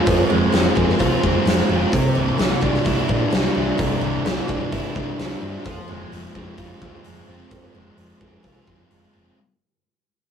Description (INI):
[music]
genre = rock, shoegaze and dream pop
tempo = 129 BPM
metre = 4/4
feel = straight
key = unclear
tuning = A4 = 440 Hz
[part]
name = picked twelve-string acoustic guitar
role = arpeggios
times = 0.0-9.4 s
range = E3 to Ab4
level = -30 LUFS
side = right 5 dB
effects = none
[part]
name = overdriven electric guitar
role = riff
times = 0.0-9.4 s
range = C3 to F4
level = -25 LUFS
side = right 5 dB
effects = none
[part]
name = thick fuzz guitar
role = riff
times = 0.0-9.4 s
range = C3 to F4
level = -25 LUFS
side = left 6 dB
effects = distortion
[part]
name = hollow-body short-scale fingered electric bass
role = bass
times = 0.1-9.3 s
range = F1 to Bb2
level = -26 LUFS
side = equal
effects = none
[part]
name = huge arena drum kit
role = drums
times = 0.1-9.0 s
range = hi-hat, kick drum, snare drum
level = -22 LUFS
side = equal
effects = none
[sound]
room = wet studio ambience, RT60 0.5 s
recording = rough rehearsal-room recording, tube saturation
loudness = -17 LUFS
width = side -8 dB against mid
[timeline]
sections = 0.0-9.4 A section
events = fade-out 0.0-9.4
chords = 0.0 Fm; 1.9 Cadd9; 5.6 Fm